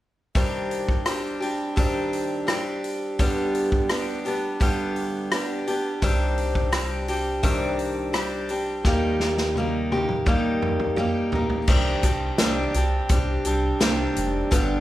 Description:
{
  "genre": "folk rock and heartland rock",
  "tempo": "85 BPM",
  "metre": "4/4",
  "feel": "straight",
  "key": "C minor",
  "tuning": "A4 = 440 Hz",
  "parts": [
    { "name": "picked steel-string acoustic guitar", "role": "accompaniment", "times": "0.3-14.8 s", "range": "G2 to G4", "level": "-24 LUFS", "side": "equal", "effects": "none" },
    { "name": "natural country drum kit", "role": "drums", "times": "0.4-14.7 s", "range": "crash cymbal, hi-hat, kick drum, rim click, snare drum, toms", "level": "-25 LUFS", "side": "equal", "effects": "none" },
    { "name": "upright bass", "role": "bass", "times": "6.0-14.8 s", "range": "F1 to Eb2", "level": "-28 LUFS", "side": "equal", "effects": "none" }
  ],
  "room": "light reverb",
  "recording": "none",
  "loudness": "-21 LUFS",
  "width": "side -14 dB against mid",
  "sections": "0.4-11.7 A section; 11.7-14.8 B section",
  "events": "drum fill 8.9-11.7",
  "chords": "0.4 Cmadd9; 3.2 G; 6.0 Cmadd9; 8.9 Eb; 11.7 Cmadd9"
}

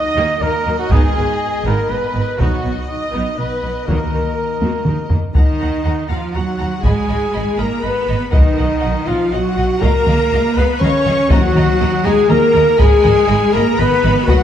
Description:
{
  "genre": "cinematic, epic orchestral film score",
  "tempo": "121 BPM",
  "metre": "3/4",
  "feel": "straight",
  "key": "Eb minor",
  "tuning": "A4 = 439 Hz",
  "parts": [
    { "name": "warm symphonic violin section", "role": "melody", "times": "0.0-14.4 s", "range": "Eb5 to Db6", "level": "-28 LUFS", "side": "left 4 dB", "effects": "none" },
    { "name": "rich symphonic violin section", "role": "second line", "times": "0.0-14.4 s", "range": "Gb4 to Cb6", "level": "-27 LUFS", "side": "left 1 dB", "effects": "none" },
    { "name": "mellow French horn section", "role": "sustained chords", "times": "0.0-14.4 s", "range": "Gb3 to Db5", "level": "-19 LUFS", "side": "left 4 dB", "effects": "none" },
    { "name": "dark trumpet", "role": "stabs", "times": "0.0-14.4 s", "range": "Eb4 to Eb5", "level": "-22 LUFS", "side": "right 1 dB", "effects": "none" },
    { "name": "rich symphonic viola section", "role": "accompaniment", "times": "0.2-14.4 s", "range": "Gb3 to Db5", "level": "-26 LUFS", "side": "right 1 dB", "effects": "none" },
    { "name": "clear symphonic cello section", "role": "bass", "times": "0.2-14.4 s", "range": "Ab2 to Db4", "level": "-22 LUFS", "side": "right 2 dB", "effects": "none" },
    { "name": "rich symphonic double bass section", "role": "bass", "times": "0.2-14.4 s", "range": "Ab1 to Eb2", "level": "-21 LUFS", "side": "right 2 dB", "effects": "none" },
    { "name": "taiko ensemble", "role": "drums", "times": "0.9-14.4 s", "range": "none", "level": "-16 LUFS", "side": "equal", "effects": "none" },
    { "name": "timpani", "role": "percussion", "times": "3.9-4.6, 11.3-12.0 s", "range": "Eb3", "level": "-25 LUFS", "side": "left 1 dB", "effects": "none" }
  ],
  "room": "moderate scoring stage reverb, RT60 2.0 s",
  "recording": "dark, warm production",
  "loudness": "-13 LUFS",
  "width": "side -10 dB against mid",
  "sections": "0.0-5.4 A section; 5.4-14.4 B section",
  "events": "drum fill 4.6-5.4",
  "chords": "0.0 Ebm; 0.9 Abm; 2.4 B; 3.9 Ebm; 6.8 Abm; 8.3 B; 9.8 Dbadd9; 11.3 Ebm; 12.8 Abm"
}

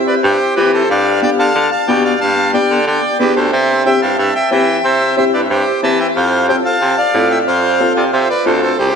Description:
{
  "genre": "latin, cumbia",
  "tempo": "182 BPM",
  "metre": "4/4",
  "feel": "straight",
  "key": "C major",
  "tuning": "A4 = 444 Hz",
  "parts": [
    { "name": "warm upright piano", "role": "accompaniment", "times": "0.0-8.7 s", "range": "B3 to A4", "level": "-17 LUFS", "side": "left 2 dB", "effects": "ensemble chorus" },
    { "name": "accordion", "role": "melody", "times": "0.1-8.9 s", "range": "G4 to A5", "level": "-14 LUFS", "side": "equal", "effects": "ping-pong delay" },
    { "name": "clear baritone saxophone", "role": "bass", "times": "0.2-9.0 s", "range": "C2 to E3", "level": "-17 LUFS", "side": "right 1 dB", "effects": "none" }
  ],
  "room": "wet lush hall reverb, RT60 3.0 s",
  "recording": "dreamy mix soaked in reverb",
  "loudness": "-11 LUFS",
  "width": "side -6 dB against mid",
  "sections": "0.0-8.8 A section",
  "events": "none",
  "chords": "0.0 C; 0.9 G7; 3.5 C; 6.2 F"
}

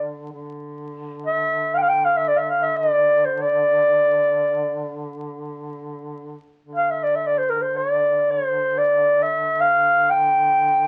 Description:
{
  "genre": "Turkish makam ensemble",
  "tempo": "free time",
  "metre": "none",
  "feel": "none",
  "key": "D makam ussak",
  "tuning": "A4 = 440 Hz",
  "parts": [
    { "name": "breathy clarinet", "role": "melody", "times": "0.0-10.9 s", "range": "Bb4 to G5", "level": "-20 LUFS", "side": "equal", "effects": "none" },
    { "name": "dark duduk", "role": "drone", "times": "0.0-10.9 s", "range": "D3", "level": "-36 LUFS", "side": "equal", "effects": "none" }
  ],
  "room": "moderate studio reverb, RT60 0.8 s",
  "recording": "very old 78 rpm record, vinyl crackle",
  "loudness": "-20 LUFS",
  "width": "mono",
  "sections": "0.0-10.9 A section",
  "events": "none",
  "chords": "none"
}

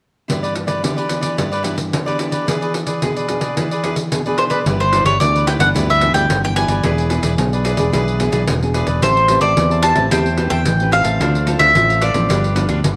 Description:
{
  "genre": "samba and choro",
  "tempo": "110 BPM",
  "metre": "4/4",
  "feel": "straight",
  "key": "G major",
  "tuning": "A4 = 440 Hz",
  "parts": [
    { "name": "cavaquinho", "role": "accompaniment", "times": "0.3-12.8 s", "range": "D4 to A5", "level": "-26 LUFS", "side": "equal", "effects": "none" },
    { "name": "nylon-string guitar", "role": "accompaniment", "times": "0.3-13.0 s", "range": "G2 to B4", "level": "-25 LUFS", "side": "equal", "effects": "none" },
    { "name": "pandeiro", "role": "percussion", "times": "0.3-13.0 s", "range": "none", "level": "-24 LUFS", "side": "equal", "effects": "none" },
    { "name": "mandolin", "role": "melody", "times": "4.4-13.0 s", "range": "B4 to A5", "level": "-18 LUFS", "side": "equal", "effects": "none" },
    { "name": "growling fingered electric bass", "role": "bass", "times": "4.7-13.0 s", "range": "E1 to E2", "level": "-21 LUFS", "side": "equal", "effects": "overdrive" }
  ],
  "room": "light reverb, small room ambience",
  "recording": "none",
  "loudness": "-17 LUFS",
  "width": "mono",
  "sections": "0.3-4.7 A section; 4.7-13.0 B section",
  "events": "none",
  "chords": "0.3 G6; 2.5 E7; 4.7 G6; 6.8 E7; 9.0 Am9; 11.2 Dm7; 12.3 G7"
}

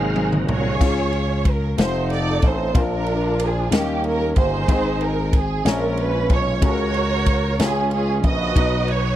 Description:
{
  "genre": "slow gospel",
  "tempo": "62 BPM (dotted quarters)",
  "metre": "6/8",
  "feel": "straight",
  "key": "unclear",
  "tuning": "A4 = 440 Hz",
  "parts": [
    { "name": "warm studio string section", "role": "melody", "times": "0.0-9.2 s", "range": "A#3 to D#5", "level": "-23 LUFS", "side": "right 3 dB", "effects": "none" },
    { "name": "dark upright piano", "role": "accompaniment", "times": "0.0-9.2 s", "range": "Ab2 to C#5", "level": "-26 LUFS", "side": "left 4 dB", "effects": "none" },
    { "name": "bright tonewheel organ", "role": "sustained chords", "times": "0.0-0.8, 8.5-9.2 s", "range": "C3 to F5", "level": "-27 LUFS", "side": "right 2 dB", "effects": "slow rotary speaker, overdrive, chorus vibrato" },
    { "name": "slap bass with an envelope filter", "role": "bass", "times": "0.0-9.2 s", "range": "F1 to D#2", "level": "-23 LUFS", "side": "equal", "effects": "none" },
    { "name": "swinging big-band drum kit", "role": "drums", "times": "0.2-9.0 s", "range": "crash cymbal, kick drum, ride cymbal, snare drum, toms", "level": "-20 LUFS", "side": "equal", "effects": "none" }
  ],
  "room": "little or no reverb",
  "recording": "dry, close 1970s-style studio recording",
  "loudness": "-18 LUFS",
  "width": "side -12 dB against mid",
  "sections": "0.8-9.2 A section",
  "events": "drum fill 0.0-0.8",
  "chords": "0.0 Ab7; 0.8 C#; 1.8 F7; 2.7 A#; 3.7 D#7; 4.7 G#; 5.7 A#m7; 6.6 F#/C#; 7.6 C#; 8.6 B"
}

